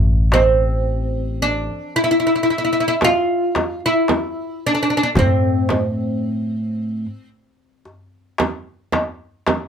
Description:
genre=Arabic maqam ensemble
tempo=112 BPM (eighths)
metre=10/8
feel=straight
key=A minor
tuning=A4 = 440 Hz
part: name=upright bass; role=bass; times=0.0-7.1 s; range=A1 to A2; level=-20 LUFS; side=equal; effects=none
part: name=oud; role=melody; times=0.3-7.3 s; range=C4 to F4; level=-18 LUFS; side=equal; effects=none
part: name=darbuka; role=percussion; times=0.3-9.7 s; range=none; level=-21 LUFS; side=left 2 dB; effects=none
part: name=frame drum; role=percussion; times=0.3-9.7 s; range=none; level=-22 LUFS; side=right 4 dB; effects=none
room=light reverb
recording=none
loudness=-17 LUFS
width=side -7 dB against mid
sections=0.0-9.7 A section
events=none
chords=none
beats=0.32 0.86 1.40 1.94 2.47 3.01 3.55 4.09 4.62 | 5.16 5.70 6.24 6.78 7.31 7.85 8.39 8.93 9.46

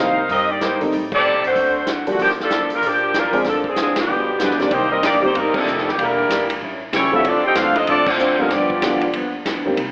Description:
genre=jazz, big band swing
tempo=190 BPM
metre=4/4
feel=swing 62% on 8ths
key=G minor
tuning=A4 = 440 Hz
part: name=dark saxophone section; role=melody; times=0.0-9.2 s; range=D3 to G5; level=-20 LUFS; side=equal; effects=none
part: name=picked steel-string acoustic guitar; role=accompaniment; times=0.0-9.9 s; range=G2 to Ab4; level=-30 LUFS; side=equal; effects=none
part: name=warm grand piano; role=accompaniment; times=0.0-9.8 s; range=D3 to Ab4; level=-26 LUFS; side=equal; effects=none
part: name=upright bass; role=bass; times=0.0-9.9 s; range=E1 to C3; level=-38 LUFS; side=equal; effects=none
part: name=swinging big-band drum kit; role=drums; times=0.3-9.9 s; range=crash cymbal, hi-hat, kick drum, ride cymbal, snare drum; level=-27 LUFS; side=equal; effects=none
part: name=warm trombone section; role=second line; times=4.0-9.1 s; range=Bb2 to G4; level=-26 LUFS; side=equal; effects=none
room=moderate scoring stage reverb, RT60 1.7 s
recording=AM radio sound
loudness=-18 LUFS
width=mono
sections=0.0-4.7 A section; 4.7-9.9 B section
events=band accent 1.1, 3.9, 5.5, 8.0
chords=0.0 Cm7; 0.9 Am7b5; 1.6 D7; 2.2 Gm7; 3.5 Dm7b5; 4.1 G7b9; 4.7 Cm7; 6.0 Em7b5; 6.6 A7; 7.2 Dm7; 8.5 G7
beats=0.30 0.61 | 0.93 1.24 1.56 1.87 | 2.19 2.50 2.82 3.13 | 3.45 3.77 4.08 4.39 | 4.71 5.03 5.34 5.66 | 5.97 6.29 6.61 6.92 | 7.24 7.56 7.87 8.19 | 8.51 8.82 9.14 9.46 | 9.78

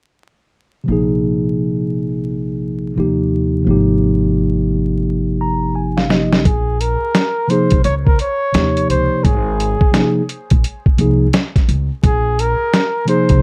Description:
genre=hip hop, jazz-hop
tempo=86 BPM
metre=4/4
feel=swing 63% on 16ths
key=Bb dorian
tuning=A4 = 440 Hz
part: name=mellow tine electric piano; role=accompaniment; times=0.8-13.4 s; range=C3 to Bb5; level=-18 LUFS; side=equal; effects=none
part: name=upright bass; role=bass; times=0.9-13.4 s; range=Ab1 to Eb2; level=-22 LUFS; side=equal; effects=none
part: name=lo-fi sampler-style drum kit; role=drums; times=6.0-13.4 s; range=hi-hat, kick drum, snare drum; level=-17 LUFS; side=equal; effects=none
part: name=breathy flugelhorn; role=melody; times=6.5-13.4 s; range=Ab4 to Db5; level=-21 LUFS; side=equal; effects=tape echo
room=moderate studio reverb, RT60 0.5 s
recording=dark, warm production, vinyl crackle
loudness=-16 LUFS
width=mono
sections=0.9-6.5 A section; 6.5-13.4 B section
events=tine electric piano fill 5.1-6.5; drum fill 5.8-6.5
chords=0.9 Bbsus2; 3.0 Eb69; 3.7 Abmaj7; 6.5 Bbm9; 8.5 Eb13; 9.2 Ab; 12.0 Bb7sus2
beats=| 0.87 1.57 2.27 2.96 | 3.66 4.36 5.06 5.75 | 6.45 7.15 7.85 8.54 | 9.24 9.94 10.64 11.34 | 12.03 12.73

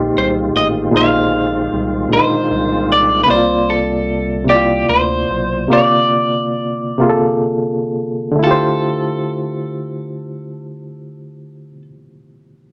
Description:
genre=slow six-eight R&B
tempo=41-51 BPM (dotted quarters)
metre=6/8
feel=straight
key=D minor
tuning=A4 = 440 Hz
part: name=reed electric piano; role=accompaniment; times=0.0-12.7 s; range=Bb2 to D5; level=-19 LUFS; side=equal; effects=fast tremolo
part: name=bright tonewheel organ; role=sustained chords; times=0.0-3.2 s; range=Eb3 to F4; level=-23 LUFS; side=equal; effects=chorus vibrato, slow rotary speaker
part: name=rubbery square bass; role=bass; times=0.0-5.7 s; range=A1 to D2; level=-26 LUFS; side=equal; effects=none
part: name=electric guitar at the edge of break-up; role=melody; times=0.2-11.8 s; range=G4 to F5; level=-20 LUFS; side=equal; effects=none
room=moderate studio reverb, RT60 0.5 s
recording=none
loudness=-15 LUFS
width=mono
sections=0.0-8.4 A section; 8.4-11.3 B section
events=slowing down 3.3-8.4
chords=0.0 Bb9sus4; 3.3 C9sus4; 8.4 Dm11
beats=| 0.92 2.10 | 3.28 4.47 | 5.70 7.00 | 8.41 9.88

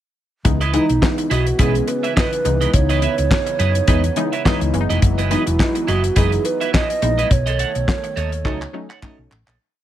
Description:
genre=early-eighties boogie funk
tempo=105 BPM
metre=4/4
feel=swing 56% on 16ths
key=C# minor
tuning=A4 = 441 Hz
part: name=funky polysynth comp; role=accompaniment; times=0.4-9.3 s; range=E3 to D#4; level=-24 LUFS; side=left 3 dB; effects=chorus
part: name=electric guitar at the edge of break-up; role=riff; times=0.4-9.6 s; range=E4 to F#5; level=-26 LUFS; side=right 7 dB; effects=analog chorus
part: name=chorused pulse-width pad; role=sustained chords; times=0.5-9.6 s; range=C#3 to D#4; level=-30 LUFS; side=equal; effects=none
part: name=hollow-body short-scale fingered electric bass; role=bass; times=0.5-9.6 s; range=E1 to F#2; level=-20 LUFS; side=equal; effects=none
part: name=damped 70s drum kit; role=drums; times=0.5-9.6 s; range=handclaps, hi-hat, kick drum, snare drum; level=-19 LUFS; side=left 1 dB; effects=none
part: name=mellow hollow alto flute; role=melody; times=0.7-9.3 s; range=D#4 to D#5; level=-22 LUFS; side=right 4 dB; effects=none
room=studio ambience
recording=none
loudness=-16 LUFS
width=side -12 dB against mid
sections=0.5-9.6 verse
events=fade-out 7.3-9.6; drum fill 8.5-9.6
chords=0.5 C#m9; 4.7 F#13sus4; 7.3 B9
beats=| 0.45 1.02 1.59 2.17 | 2.74 3.31 3.88 4.45 | 5.02 5.59 6.17 6.74 | 7.31 7.88 8.45 9.02

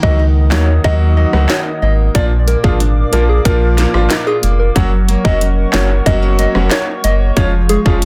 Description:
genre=dancehall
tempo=92 BPM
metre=4/4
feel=straight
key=Eb minor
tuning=A4 = 444 Hz
part: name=soft struck synth lead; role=melody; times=0.0-8.0 s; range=Ab4 to Eb5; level=-22 LUFS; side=equal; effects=chorus, tremolo, digital delay
part: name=clear grand piano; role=accompaniment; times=0.0-8.0 s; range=F3 to Gb4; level=-22 LUFS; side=equal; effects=none
part: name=hollow soft pad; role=sustained chords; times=0.0-8.1 s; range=Ab4 to Eb6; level=-28 LUFS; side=equal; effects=chorus, sidechain pumping
part: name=nylon-string guitar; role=arpeggios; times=0.0-8.1 s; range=Bb2 to Gb4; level=-25 LUFS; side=equal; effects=none
part: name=warm sub bass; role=bass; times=0.0-8.1 s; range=F1 to Eb2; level=-16 LUFS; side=equal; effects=none
part: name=island pop drum kit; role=drums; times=0.0-8.1 s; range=handclaps, hi-hat, kick drum, rim click, snare drum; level=-19 LUFS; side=equal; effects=none
room=digital ambience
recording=dense, heavily limited modern master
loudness=-13 LUFS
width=mono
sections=0.0-8.1 A section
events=none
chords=0.0 Ebm; 2.1 Bb; 4.8 Gb; 7.4 Db/F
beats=0.19 0.84 1.50 | 2.15 2.80 3.45 4.11 | 4.76 5.41 6.06 6.71 | 7.37 8.02

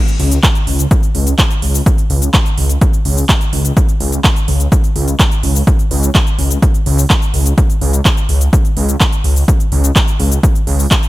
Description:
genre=EDM, festival progressive house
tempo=126 BPM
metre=4/4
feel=straight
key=unclear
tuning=A4 = 440 Hz
part: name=big-room dance drum kit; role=drums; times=0.1-11.1 s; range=handclaps, hi-hat, shaker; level=-18 LUFS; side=equal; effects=overdrive
part: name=wide detuned saw bass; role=bass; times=0.2-10.9 s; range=C#2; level=-13 LUFS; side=equal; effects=chorus, sidechain pumping
part: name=electronic kick drum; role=drums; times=0.4-11.0 s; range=none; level=-12 LUFS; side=equal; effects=overdrive
room=little or no reverb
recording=none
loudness=-10 LUFS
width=side -17 dB against mid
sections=0.0-11.1 A section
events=none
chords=none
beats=0.43 0.91 1.39 | 1.86 2.34 2.81 3.29 | 3.77 4.24 4.72 5.20 | 5.67 6.15 6.62 7.10 | 7.58 8.05 8.53 9.01 | 9.48 9.96 10.43 10.91

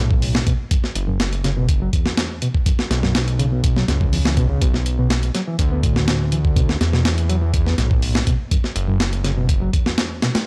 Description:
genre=breakbeat, breaks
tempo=123 BPM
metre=4/4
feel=straight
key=unclear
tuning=A4 = 444 Hz
part: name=overdriven reed electric piano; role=riff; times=0.0-10.3 s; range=E2 to B3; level=-26 LUFS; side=equal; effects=fast tremolo
part: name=fat analog bass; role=bass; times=0.0-9.7 s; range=F#1 to E2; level=-22 LUFS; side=equal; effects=none
part: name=breakbeat sampler-style drum kit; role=drums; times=0.1-10.5 s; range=hi-hat, kick drum, snare drum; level=-22 LUFS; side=equal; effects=none
room=little or no reverb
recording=dry, gritty hardware recording, cassette tape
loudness=-19 LUFS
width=mono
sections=0.0-10.5 A section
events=none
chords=0.5 F#5; 4.6 Bm7; 8.3 F#5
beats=0.22 | 0.71 1.20 1.69 2.17 | 2.66 3.15 3.64 4.12 | 4.61 5.10 5.59 6.08 | 6.56 7.05 7.54 8.03 | 8.52 9.00 9.49 9.98

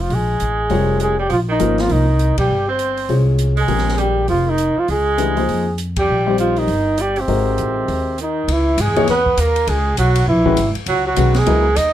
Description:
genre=modal jazz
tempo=200 BPM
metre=4/4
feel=swing 61% on 8ths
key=Bb dorian, C# dorian from 8.5 s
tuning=A4 = 441 Hz
part: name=trumpet with bucket mute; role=melody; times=0.0-11.9 s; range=C4 to D#5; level=-19 LUFS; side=equal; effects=none
part: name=warm tenor saxophone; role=second line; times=0.0-11.9 s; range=C3 to D#4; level=-24 LUFS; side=right 7 dB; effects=none
part: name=upright bass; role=bass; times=0.0-11.9 s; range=F1 to G#2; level=-19 LUFS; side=equal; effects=none
part: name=open jazz drum kit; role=drums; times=0.1-11.8 s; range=hi-hat, kick drum, ride cymbal, snare drum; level=-28 LUFS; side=equal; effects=none
part: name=warm grand piano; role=accompaniment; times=0.7-11.6 s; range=C3 to D#5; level=-20 LUFS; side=left 5 dB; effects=none
room=light reverb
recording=dark, warm production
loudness=-14 LUFS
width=side -12 dB against mid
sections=0.0-8.5 A section; 8.5-11.9 B section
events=band accent 2.3, 5.9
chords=0.0 Bbm9; 1.3 Cm; 3.7 Bbm7; 6.1 Cm/Bb; 7.3 Ab7; 8.5 C#m9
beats=| 0.10 0.40 0.70 1.00 | 1.29 1.59 1.89 2.19 | 2.49 2.79 3.09 3.39 | 3.69 3.99 4.29 4.59 | 4.89 5.19 5.49 5.79 | 6.08 6.38 6.68 6.98 | 7.28 7.58 7.88 8.18 | 8.48 8.78 9.08 9.38 | 9.68 9.97 10.27 10.57 | 10.87 11.17 11.46 11.76

